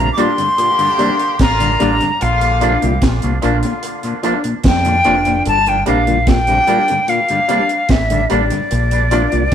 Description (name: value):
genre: roots reggae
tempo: 74 BPM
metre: 4/4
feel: straight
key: G minor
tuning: A4 = 440 Hz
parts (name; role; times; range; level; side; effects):
- bright silver concert flute; melody; 0.0-9.5 s; D5 to D6; -15 LUFS; left 1 dB; none
- warm horn section; second line; 0.0-4.4 s; Bb2 to G4; -23 LUFS; equal; none
- mellow tonewheel organ; accompaniment; 0.0-9.4 s; G2 to D4; -22 LUFS; left 2 dB; overdrive, chorus vibrato, slow rotary speaker, dub echo
- mellow clav; arpeggios; 0.0-9.4 s; Bb2 to D3; -24 LUFS; left 3 dB; none
- deep dub fingered electric bass; bass; 0.0-9.5 s; F1 to F2; -18 LUFS; right 1 dB; none
- semi-hollow electric guitar; accompaniment; 0.2-9.2 s; F3 to D4; -24 LUFS; right 5 dB; dub echo
- clear upright piano; stabs; 0.2-9.3 s; D4 to Bb4; -23 LUFS; left 2 dB; none
- deep reggae drum kit; drums; 0.2-9.5 s; hi-hat, kick drum, snare drum; -19 LUFS; right 1 dB; dub echo
room: moderate stone room reverb, RT60 1.1 s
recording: rough rehearsal-room recording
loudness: -12 LUFS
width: side -9 dB against mid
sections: 0.0-9.5 A section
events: none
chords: 0.0 Gm; 2.2 Bb; 5.5 Gm; 8.7 Bb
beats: 0.58 1.40 | 2.21 3.02 3.83 4.64 | 5.46 6.27 7.08 7.89 | 8.71 9.52